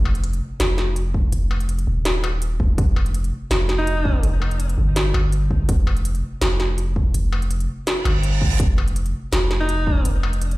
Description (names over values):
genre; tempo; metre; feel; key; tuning
half-time drum and bass; 165 BPM; 4/4; swing 53% on 16ths, half-time; unclear; A4 = 441 Hz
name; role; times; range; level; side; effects
long sustained 808-style bass; bass; 0.0-10.6 s; Eb1 to G1; -20 LUFS; equal; none
industrial drum kit; drums; 0.1-10.6 s; hi-hat, snare drum, struck metal; -25 LUFS; equal; none
electronic kick drum; drums; 1.1-9.9 s; none; -20 LUFS; equal; none
bright alto saxophone; melody; 3.8-4.3, 9.6-10.1 s; Eb4; -26 LUFS; equal; ping-pong delay
reverse cymbal; sound effects; 8.0-8.6 s; none; -28 LUFS; right 4 dB; none
room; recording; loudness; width
digital ambience; played on a big sound system in a bare room, large studio reverb; -18 LUFS; side -19 dB against mid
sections
0.0-10.6 A section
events
reverse cymbal 8.0-8.6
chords
0.0 Ebadd9 (rootless)